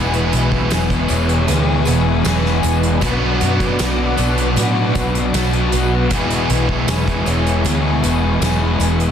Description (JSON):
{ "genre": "rock, shoegaze and dream pop", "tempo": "78 BPM", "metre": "4/4", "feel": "straight", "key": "E mixolydian", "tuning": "A4 = 440 Hz", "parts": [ { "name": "string machine, violas", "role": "sustained chords", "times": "0.0-9.1 s", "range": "B4 to D6", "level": "-27 LUFS", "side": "equal", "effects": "ensemble chorus" }, { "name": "picked twelve-string acoustic guitar", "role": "arpeggios", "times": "0.0-9.1 s", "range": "E3 to G#4", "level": "-28 LUFS", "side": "right 2 dB", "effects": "analog chorus, tape echo" }, { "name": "biting overdriven guitar", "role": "riff", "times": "0.0-9.1 s", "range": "E2 to G#4", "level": "-23 LUFS", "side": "right 9 dB", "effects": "reverse reverb" }, { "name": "cranked stack guitar", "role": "riff", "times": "0.0-9.1 s", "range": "E2 to B3", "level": "-22 LUFS", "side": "equal", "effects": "overdrive" }, { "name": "crunchy overdriven guitar", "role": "riff", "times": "0.0-9.1 s", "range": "E2 to G#4", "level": "-21 LUFS", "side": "left 9 dB", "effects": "analog chorus" }, { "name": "vintage muted fingered electric bass", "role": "bass", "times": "0.0-9.1 s", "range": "E1 to A2", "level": "-19 LUFS", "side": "equal", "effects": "none" }, { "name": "loose indie drum kit", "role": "drums", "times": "0.1-9.1 s", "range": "hi-hat, kick drum, snare drum", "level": "-24 LUFS", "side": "right 1 dB", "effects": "none" }, { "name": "tambourine", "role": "percussion", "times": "0.3-9.0 s", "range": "none", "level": "-35 LUFS", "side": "left 10 dB", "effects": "none" } ], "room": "light reverb, small room ambience", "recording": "dense, heavily limited modern master", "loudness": "-14 LUFS", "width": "side -8 dB against mid", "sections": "0.0-9.1 A section", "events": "none", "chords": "0.0 E6; 3.0 Bm; 6.1 E6" }